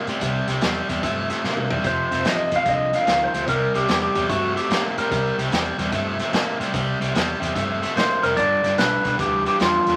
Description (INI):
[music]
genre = electric blues shuffle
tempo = 147 BPM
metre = 4/4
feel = swing 66% on 8ths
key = C mixolydian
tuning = A4 = 439 Hz
[part]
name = crunchy overdriven guitar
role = riff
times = 0.0-10.0 s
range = F2 to Bb3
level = -27 LUFS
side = equal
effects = none
[part]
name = vintage muted fingered electric bass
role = bass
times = 0.1-10.0 s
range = F1 to A2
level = -33 LUFS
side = equal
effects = none
[part]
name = crunchy breakbeat drum kit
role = drums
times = 0.1-9.9 s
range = hi-hat, kick drum, snare drum, toms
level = -28 LUFS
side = equal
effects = none
[part]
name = clean lap steel guitar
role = melody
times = 1.9-5.4, 8.0-10.0 s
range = F4 to F5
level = -23 LUFS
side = equal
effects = none
[sound]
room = moderate studio reverb, RT60 0.6 s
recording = vinyl crackle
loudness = -22 LUFS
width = mono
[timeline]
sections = 0.0-10.0 A section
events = drum fill 1.4-1.8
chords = 0.0 C7; 1.8 F7; 3.5 C7; 8.4 G7